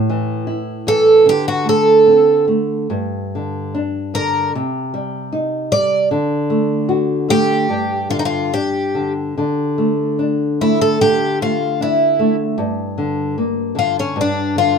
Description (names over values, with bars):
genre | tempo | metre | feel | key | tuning
fado-style ballad | 75 BPM | 2/4 | rubato | D harmonic minor from 9.4 s | A4 = 440 Hz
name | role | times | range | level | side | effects
nylon-string guitar | accompaniment | 0.0-14.8 s | G2 to F#4 | -18 LUFS | equal | none
picked twelve-string acoustic guitar | melody | 0.9-14.8 s | C#4 to D5 | -14 LUFS | right 2 dB | none
room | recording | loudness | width
moderate small room reverb, RT60 0.5 s | minimal, uncompressed stereo recording | -14 LUFS | side -6 dB against mid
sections
0.0-9.4 A section; 9.4-14.8 B section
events
none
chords
0.0 A5; 1.3 D5; 2.9 G5; 4.5 Cm; 6.1 D; 7.7 G5; 9.4 D5; 12.6 Gm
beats
0.48 | 1.26 2.06 | 2.90 3.74 | 4.54 5.32 | 6.10 6.89 | 7.69 8.52 | 9.36 10.18 | 10.99 11.79 | 12.57 13.36 | 14.15